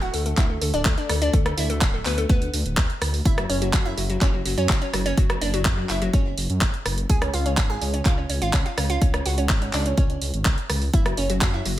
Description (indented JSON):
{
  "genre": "progressive house",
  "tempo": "125 BPM",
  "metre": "4/4",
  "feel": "straight",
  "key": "F# minor",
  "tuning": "A4 = 440 Hz",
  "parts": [
    { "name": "analog pluck", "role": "arpeggios", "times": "0.0-11.7 s", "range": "F#3 to G#4", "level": "-27 LUFS", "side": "equal", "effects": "chorus, sidechain pumping, digital delay" },
    { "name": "dark detuned saw bass", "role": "bass", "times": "0.0-11.8 s", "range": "D1 to F#2", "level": "-26 LUFS", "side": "equal", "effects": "sidechain pumping" },
    { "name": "house drum kit", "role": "drums", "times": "0.1-11.8 s", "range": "handclaps, hi-hat, rim click", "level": "-27 LUFS", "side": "right 1 dB", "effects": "none" },
    { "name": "electronic kick drum", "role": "drums", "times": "0.4-11.5 s", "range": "none", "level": "-21 LUFS", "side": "equal", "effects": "none" }
  ],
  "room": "little or no reverb",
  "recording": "none",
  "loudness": "-20 LUFS",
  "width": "side -14 dB against mid",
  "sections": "0.0-11.8 A section",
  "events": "none",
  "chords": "0.0 D5; 3.3 F#5; 7.1 C#5; 10.9 F#5",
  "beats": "0.38 0.86 | 1.34 1.82 2.30 2.78 | 3.26 3.74 4.22 4.70 | 5.18 5.66 6.14 6.62 | 7.10 7.58 8.06 8.54 | 9.02 9.50 9.98 10.46 | 10.94 11.42"
}